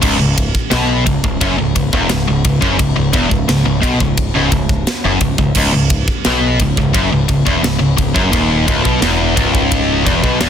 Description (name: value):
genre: heavy metal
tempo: 87 BPM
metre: 4/4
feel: straight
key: C# minor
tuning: A4 = 440 Hz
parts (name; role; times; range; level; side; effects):
- high-gain distorted guitar; riff; 0.0-10.5 s; C#2 to B2; -14 LUFS; left 1 dB; distortion
- growling picked electric bass; bass; 0.0-10.5 s; C#1 to B1; -19 LUFS; equal; overdrive
- tight metal drum kit; drums; 0.0-10.5 s; crash cymbal, kick drum, ride cymbal, snare drum; -17 LUFS; equal; none
room: little or no reverb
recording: dense, heavily limited modern master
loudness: -12 LUFS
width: side -8 dB against mid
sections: 0.0-10.5 A section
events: none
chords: 0.0 C#m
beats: | 0.03 0.72 1.41 2.10 | 2.79 3.49 4.18 4.87 | 5.56 6.25 6.95 7.64 | 8.33 9.02 9.71 10.41